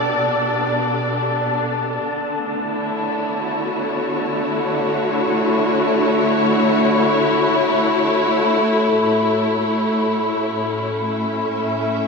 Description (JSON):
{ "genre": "ambient", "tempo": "69 BPM", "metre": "4/4", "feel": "straight", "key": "unclear", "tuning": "A4 = 440 Hz", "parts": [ { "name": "muted studio string section", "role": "sustained chords", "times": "0.0-12.1 s", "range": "A2 to E5", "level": "-17 LUFS", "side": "left 1 dB", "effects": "none" }, { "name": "wind-like tuned noise texture", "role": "texture", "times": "0.0-9.0 s", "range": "A4 to A5", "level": "-27 LUFS", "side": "left 2 dB", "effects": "built-in reverb" } ], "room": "wet lush hall reverb, RT60 2.8 s", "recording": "studio reverb", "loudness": "-17 LUFS", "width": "side -4 dB against mid", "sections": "0.0-9.0 A section; 9.0-12.1 B section", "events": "none", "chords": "0.0 G/B; 2.1 Dmaj7; 9.0 A" }